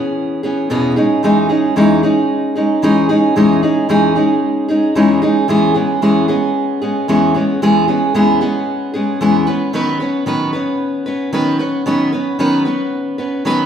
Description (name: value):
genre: pop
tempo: 113 BPM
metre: 4/4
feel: straight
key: E major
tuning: A4 = 440 Hz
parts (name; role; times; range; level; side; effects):
- fingerpicked steel-string acoustic guitar; solo; 0.0-13.7 s; E2 to B4; -12 LUFS; equal; none
room: wet recital hall reverb, RT60 1.4 s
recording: recorded in a church or concert hall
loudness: -12 LUFS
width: side -8 dB against mid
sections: 0.0-13.7 A section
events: none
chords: 0.0 E6; 1.0 C#madd9/E; 5.5 E6; 9.5 Badd9/D#